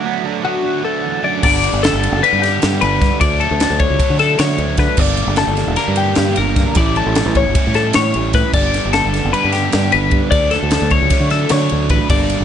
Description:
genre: math rock and midwest emo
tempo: 304 BPM (eighths)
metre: 9/8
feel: straight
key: D major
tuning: A4 = 438 Hz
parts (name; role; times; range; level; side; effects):
- twangy electric guitar; accompaniment; 0.0-3.2 s; D2 to F#4; -25 LUFS; right 15 dB; phaser
- twelve-string electric guitar; arpeggios; 0.0-12.4 s; F#4 to D5; -17 LUFS; left 8 dB; phaser
- overdriven electric guitar; riff; 0.0-12.4 s; G2 to E4; -21 LUFS; right 5 dB; none
- fingered electric bass; bass; 1.4-12.4 s; E1 to D3; -18 LUFS; equal; none
- crisp fusion drum kit; drums; 1.4-12.4 s; crash cymbal, kick drum, ride cymbal, snare drum; -18 LUFS; equal; none
room: little or no reverb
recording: nothing above 10.3 kHz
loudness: -13 LUFS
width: side -9 dB against mid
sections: 0.0-1.4 A section; 1.4-12.4 B section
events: break 0.0-1.4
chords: 0.0 D6; 1.4 Gadd9; 3.2 Dmaj7; 5.0 Gm; 6.8 A7(no3); 8.5 Gadd9; 10.3 Dmaj7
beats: 0.04 0.24 0.44 0.64 0.84 1.03 1.23 | 1.43 1.63 1.83 2.03 2.23 2.42 2.62 2.82 3.02 | 3.22 3.41 3.61 3.81 4.01 4.20 4.40 4.60 4.80 | 4.99 5.19 5.39 5.59 5.78 5.98 6.18 6.38 6.57 | 6.77 6.97 7.17 7.36 7.56 7.76 7.96 8.15 8.35 | 8.55 8.74 8.94 9.14 9.34 9.54 9.73 9.93 10.13 | 10.32 10.52 10.72 10.92 11.11 11.31 11.51 11.71 11.90 | 12.10 12.30

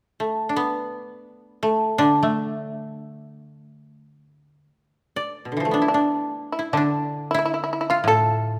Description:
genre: japanese traditional, Japanese chamber music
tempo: free time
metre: none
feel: none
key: D kumoi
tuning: A4 = 440 Hz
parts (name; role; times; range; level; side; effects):
- koto; melody; 0.2-8.6 s; B2 to D5; -24 LUFS; equal; none
- koto; accompaniment; 2.0-8.6 s; A2 to A3; -30 LUFS; equal; none
- shamisen; second line; 5.9-8.6 s; D4 to A4; -26 LUFS; equal; none
room: moderate recital hall reverb, RT60 1.7 s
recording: none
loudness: -23 LUFS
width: mono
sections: 0.0-6.7 A section; 6.7-8.6 B section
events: none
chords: none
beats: free time

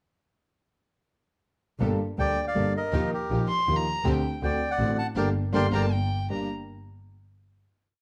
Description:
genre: tango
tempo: 160 BPM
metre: 3/4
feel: rubato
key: G minor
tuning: A4 = 440 Hz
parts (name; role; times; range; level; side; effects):
- clear grand piano; accompaniment; 1.8-6.5 s; G1 to A4; -31 LUFS; equal; none
- clear studio string section; stabs; 1.8-6.5 s; Bb3 to A4; -40 LUFS; equal; none
- warm double bass; bass; 1.8-6.5 s; G1 to Eb2; -32 LUFS; equal; none
- bandoneon; melody; 2.2-5.9 s; G4 to A5; -31 LUFS; equal; plate reverb
- warm violin; second line; 3.5-6.5 s; G5 to C6; -32 LUFS; equal; none
room: moderate large studio reverb, RT60 0.9 s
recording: dark, warm production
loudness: -26 LUFS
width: mono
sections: 1.8-6.3 A section; 6.3-7.4 final chord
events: band accent 5.2-6.3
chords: 1.8 Gmadd9; 2.9 Ebadd9; 4.0 D7sus4; 4.4 D7; 5.2 Gm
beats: | 1.80 2.18 2.56 | 2.93 3.31 3.68 | 4.05 4.42 4.79 | 5.17 5.54 5.92 | 6.30

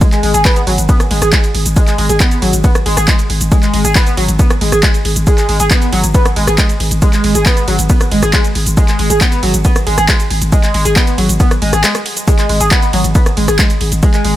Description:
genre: driving peak-time techno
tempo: 137 BPM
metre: 4/4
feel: straight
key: G# minor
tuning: A4 = 439 Hz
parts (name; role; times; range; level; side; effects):
- overdriven synth lead; riff; 0.0-14.3 s; F#3 to G#4; -16 LUFS; equal; distortion, tube saturation, lush chorus, cassette tape, sidechain pumping, digital delay
- electronic kick drum; drums; 0.0-14.1 s; none; -12 LUFS; equal; none
- punchy analog drum machine; drums; 0.0-14.3 s; handclaps, hi-hat, ride cymbal, rim click, shaker; -17 LUFS; right 1 dB; none
- growling 808-style bass; bass; 0.2-14.3 s; G#1; -15 LUFS; equal; sidechain pumping, low-pass filter
room: little or no reverb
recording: none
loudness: -10 LUFS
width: side -14 dB against mid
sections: 0.0-14.4 A section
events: break 11.8-12.3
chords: none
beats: | 0.01 0.45 0.89 1.33 | 1.76 2.20 2.64 3.08 | 3.52 3.95 4.39 4.83 | 5.27 5.71 6.14 6.58 | 7.02 7.46 7.90 8.33 | 8.77 9.21 9.65 10.09 | 10.52 10.96 11.40 11.84 | 12.28 12.71 13.15 13.59 | 14.03

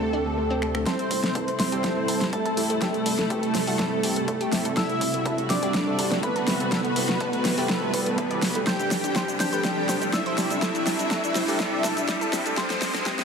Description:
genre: progressive house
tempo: 123 BPM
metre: 4/4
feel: straight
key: A dorian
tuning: A4 = 439 Hz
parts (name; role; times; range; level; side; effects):
- soft supersaw; melody; 0.0-13.2 s; A3 to G5; -27 LUFS; right 1 dB; ping-pong delay
- dark studio string section; sustained chords; 0.0-13.2 s; C3 to F#4; -34 LUFS; left 2 dB; sidechain pumping
- analog pluck; arpeggios; 0.0-13.2 s; A3 to D5; -33 LUFS; left 2 dB; chorus, cassette tape, sidechain pumping, tape echo
- chorused polysynth; stabs; 0.0-13.1 s; G3 to C5; -30 LUFS; right 3 dB; sidechain pumping, tape echo
- dark detuned saw bass; bass; 0.0-0.8 s; D2; -32 LUFS; left 1 dB; sidechain pumping
- deep house drum kit; drums; 0.6-13.2 s; finger snaps, hi-hat, shaker, snare drum; -28 LUFS; equal; overdrive, small room reverb
- soft synth bell; second line; 0.9-13.2 s; A5 to G6; -35 LUFS; left 2 dB; chorus, sidechain pumping, tape echo
- electronic kick drum; drums; 0.9-13.2 s; none; -37 LUFS; left 1 dB; none
- riser; sound effects; 2.7-13.2 s; none; -35 LUFS; left 1 dB; none
room: moderate huge ambient reverb, RT60 6.5 s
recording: heavily compressed radio sound, high-pass filter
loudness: -22 LUFS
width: side -6 dB against mid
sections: 0.9-13.2 A section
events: build-up 0.9-13.2; drum fill 0.9-13.2; filter sweep on analog polysynth 0.9-13.2; riser 2.7-13.2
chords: 0.0 D7sus4; 0.9 Am7; 8.7 D7sus4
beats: 0.38 | 0.87 1.35 1.84 2.33 | 2.82 3.31 3.79 4.28 | 4.77 5.26 5.74 6.23 | 6.72 7.21 7.70 8.18 | 8.67 9.16 9.65 10.13 | 10.62 11.11 11.60 12.09 | 12.57 13.06

